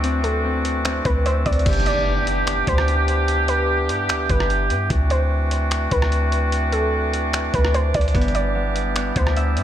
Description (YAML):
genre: hip hop, atmospheric cloud-rap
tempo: 148 BPM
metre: 4/4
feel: half-time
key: G major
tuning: A4 = 439 Hz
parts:
  - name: mellow woodwind section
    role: sustained chords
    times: 0.0-9.6 s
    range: E3 to G4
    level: -23 LUFS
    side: equal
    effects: none
  - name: concert harp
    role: arpeggios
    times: 0.0-4.1, 8.1-9.6 s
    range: B3 to E5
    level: -30 LUFS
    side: left 2 dB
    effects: low-pass filter, tape echo
  - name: soft 808-style bass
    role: bass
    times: 0.0-9.6 s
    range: G1 to G2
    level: -22 LUFS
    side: equal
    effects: none
  - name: trip hop sampler-style drum kit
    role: drums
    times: 0.0-9.6 s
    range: crash cymbal, finger snaps, hi-hat, kick drum, rim click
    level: -25 LUFS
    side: equal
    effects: none
  - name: warbly dusty pluck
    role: melody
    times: 0.2-9.4 s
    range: A4 to D5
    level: -26 LUFS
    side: right 1 dB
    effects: chorus, low-pass filter, tape echo
  - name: impact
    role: sound effects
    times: 1.7-3.3 s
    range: none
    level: -31 LUFS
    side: equal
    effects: none
room: light reverb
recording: none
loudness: -18 LUFS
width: side -10 dB against mid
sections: 0.0-1.7 A section; 1.7-9.6 B section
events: impact 1.7-3.3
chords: 0.0 D9; 1.7 G6; 4.9 D9; 8.1 G6